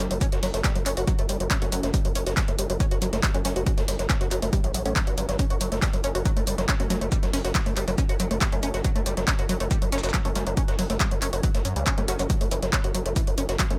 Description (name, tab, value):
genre	driving peak-time techno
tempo	139 BPM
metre	4/4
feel	straight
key	F# phrygian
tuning	A4 = 441 Hz
part	tight sequenced synth	riff	0.0-13.8 s	E3 to F#4	-34 LUFS	equal	chorus, phaser, sidechain pumping, dub echo
part	filtered dub chord stab	stabs	0.0-13.8 s	F#3 to C#4	-37 LUFS	equal	phaser, ensemble chorus, sidechain pumping, dub echo
part	gritty driven synth bass	bass	0.0-13.8 s	F#1 to F#2	-30 LUFS	equal	sidechain pumping
part	dusty soul sampler-style drum kit	drums	0.0-13.7 s	hi-hat, shaker, snare drum	-40 LUFS	equal	none
part	punchy analog drum machine	drums	0.0-13.8 s	handclaps, hi-hat	-32 LUFS	equal	overdrive, small room ambience, sidechain pumping on hats, sidechain pumping on cymbals
part	electronic kick drum	drums	0.2-13.7 s	none	-27 LUFS	equal	small room ambience
room	digital ambience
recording	none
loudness	-25 LUFS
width	mono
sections	0.0-13.8 A section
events	none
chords	0.0 F#m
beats	| 0.21 0.64 1.07 1.51 | 1.94 2.37 2.80 3.23 | 3.67 4.10 4.53 4.96 | 5.39 5.82 6.25 6.69 | 7.12 7.55 7.98 8.41 | 8.85 9.28 9.71 10.14 | 10.57 11.00 11.44 11.87 | 12.30 12.73 13.16 13.59